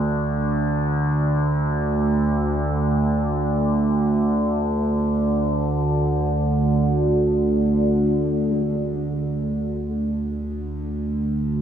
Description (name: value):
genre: ambient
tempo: free time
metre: none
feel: none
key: unclear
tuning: A4 = 440 Hz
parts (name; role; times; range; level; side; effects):
- overtone-sweeping drone; solo; 0.0-11.6 s; D2 to D3; -19 LUFS; right 1 dB; chorus, built-in reverb, tape echo
room: wet huge ambient reverb, RT60 8.1 s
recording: in a vast, echoing space, small room ambience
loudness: -19 LUFS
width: side -9 dB against mid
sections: 0.0-8.5 A section; 8.5-11.6 A section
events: none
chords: none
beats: free time